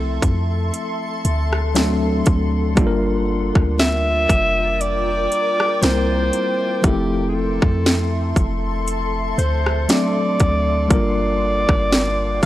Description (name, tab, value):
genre	contemporary R&B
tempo	59 BPM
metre	4/4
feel	swing 54% on 16ths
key	G dorian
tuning	A4 = 440 Hz
part	breathy alto saxophone	melody	0.0-12.5 s	G4 to E5	-21 LUFS	equal	none
part	tine electric piano	accompaniment	0.0-12.5 s	F3 to Bb4	-23 LUFS	left 1 dB	medium stereo tremolo
part	granular cloud pad	sustained chords	0.0-12.5 s	F4 to D6	-27 LUFS	left 2 dB	built-in reverb
part	warm 808-style bass	bass	0.0-12.5 s	F1 to F2	-22 LUFS	equal	none
part	trap drum kit	drums	0.2-12.5 s	hi-hat, kick drum, rim click, snare drum	-18 LUFS	equal	overdrive
room	digital ambience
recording	dry, gritty hardware recording, transformer saturation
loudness	-16 LUFS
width	side -14 dB against mid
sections	0.0-12.5 A section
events	none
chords	0.0 Fmaj7; 1.8 D7; 2.8 Gm7; 5.8 C7; 6.8 Fmaj7; 9.9 D7; 10.9 Gm7